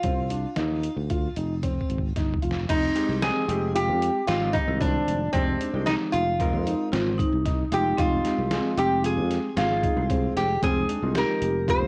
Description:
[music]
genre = progressive instrumental, band music in an uneven meter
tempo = 114 BPM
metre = 5/4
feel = straight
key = F dorian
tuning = A4 = 442 Hz
[part]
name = lap resonator guitar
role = melody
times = 0.0-11.9 s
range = C4 to C5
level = -29 LUFS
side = equal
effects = cassette tape
[part]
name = dark concert grand piano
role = arpeggios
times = 0.0-11.8 s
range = C4 to Ab4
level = -34 LUFS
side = equal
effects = cassette tape
[part]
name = sustaining fretless electric bass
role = bass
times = 0.0-11.9 s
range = F1 to F2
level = -31 LUFS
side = equal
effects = tube saturation
[part]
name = trip hop sampler-style drum kit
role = drums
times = 0.0-11.8 s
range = crash cymbal, hi-hat, kick drum, snare drum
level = -32 LUFS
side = equal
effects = cassette tape
[part]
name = vibraphone with medium hard mallets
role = second line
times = 2.7-11.9 s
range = C4 to Ab4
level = -34 LUFS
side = equal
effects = cassette tape
[part]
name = hollow-body jazz guitar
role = accompaniment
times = 3.0-11.9 s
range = Eb3 to G5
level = -34 LUFS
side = equal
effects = cassette tape
[sound]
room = light reverb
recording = home recording on cassette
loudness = -25 LUFS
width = mono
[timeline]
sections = 0.0-2.7 A section; 2.7-11.9 B section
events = drum fill 1.6-2.7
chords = 0.0 F7(no3); 2.7 Fm7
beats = | 0.04 0.57 1.10 1.63 2.16 | 2.69 3.22 3.75 4.28 4.81 | 5.34 5.87 6.40 6.93 7.46 | 7.98 8.51 9.04 9.57 10.10 | 10.62 11.15 11.68

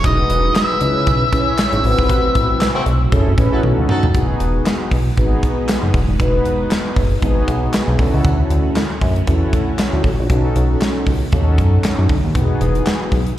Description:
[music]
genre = early-eighties boogie funk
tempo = 117 BPM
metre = 4/4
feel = swing 56% on 16ths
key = E major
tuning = A4 = 440 Hz
[part]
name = octave-fuzz lead guitar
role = melody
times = 0.0-3.6 s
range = D#5 to E5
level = -20 LUFS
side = left 1 dB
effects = distortion, slapback echo
[part]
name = mellow synth brass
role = accompaniment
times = 0.0-13.2 s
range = B3 to C#5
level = -21 LUFS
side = equal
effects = chorus, slapback echo
[part]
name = phased string machine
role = sustained chords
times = 0.0-13.4 s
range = C3 to F#4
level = -28 LUFS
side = equal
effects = ensemble chorus, phaser
[part]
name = chorused synth bass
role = bass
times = 0.0-13.3 s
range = D#1 to F#2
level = -17 LUFS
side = equal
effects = none
[part]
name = modern studio drum kit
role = drums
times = 0.0-13.4 s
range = handclaps, hi-hat, kick drum, snare drum, toms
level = -19 LUFS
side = equal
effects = none
[part]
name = warm horn section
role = second line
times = 2.8-4.1 s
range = A3 to A4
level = -26 LUFS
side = equal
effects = slapback echo
[sound]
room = small room ambience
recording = live gig heard through the venue's PA, recital hall reverb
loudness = -14 LUFS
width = side -13 dB against mid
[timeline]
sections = 0.0-4.1 A section; 4.1-13.4 B section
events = band accent 2.1-4.1; drum fill 3.6-4.1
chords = 0.0 Emaj9; 0.8 C#m7; 1.8 Am6; 3.1 F#m7; 3.6 B9; 4.1 Emaj7; 8.0 Dmaj7; 10.3 B7; 12.3 Emaj7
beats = | 0.04 0.56 1.07 1.58 | 2.09 2.61 3.12 3.63 | 4.14 4.66 5.17 5.68 | 6.20 6.71 7.22 7.74 | 8.25 8.76 9.27 9.79 | 10.30 10.81 11.32 11.84 | 12.35 12.86 13.38

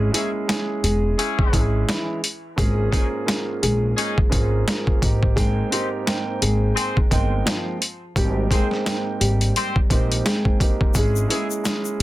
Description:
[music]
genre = hip hop, boom-bap hip-hop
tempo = 86 BPM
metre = 4/4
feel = swing 58% on 16ths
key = Ab major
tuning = A4 = 440 Hz
[part]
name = nylon-string guitar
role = melody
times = 0.0-12.0 s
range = Fb3 to Bb4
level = -28 LUFS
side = left 1 dB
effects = high-pass filter, low-pass filter, tape echo
[part]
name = dark grand piano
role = accompaniment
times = 0.0-12.0 s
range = Ab2 to G5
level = -26 LUFS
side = right 2 dB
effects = cassette tape, high-pass filter, low-pass filter
[part]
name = upright bass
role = bass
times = 0.0-12.0 s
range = Fb1 to Bb1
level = -22 LUFS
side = equal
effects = none
[part]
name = clear horn section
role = stabs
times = 0.1-11.5 s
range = C4 to C5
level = -27 LUFS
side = left 4 dB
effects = high-pass filter, low-pass filter, tape echo
[part]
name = boom bap sampler-style drum kit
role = drums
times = 0.1-12.0 s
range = hi-hat, kick drum, snare drum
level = -21 LUFS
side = equal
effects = overdrive
[part]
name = egg shaker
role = percussion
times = 10.9-12.0 s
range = none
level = -32 LUFS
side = left 8 dB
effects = none
[sound]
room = light reverb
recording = dense, heavily limited modern master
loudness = -19 LUFS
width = side -16 dB against mid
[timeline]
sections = 0.0-12.0 A section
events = none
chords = 0.0 Dbm; 2.6 Eb7sus4/Ab; 5.0 Abmaj7; 11.0 Dbm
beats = 0.49 1.18 1.88 | 2.58 3.28 3.98 4.67 | 5.37 6.07 6.76 7.46 | 8.16 8.86 9.56 10.25 | 10.95 11.65

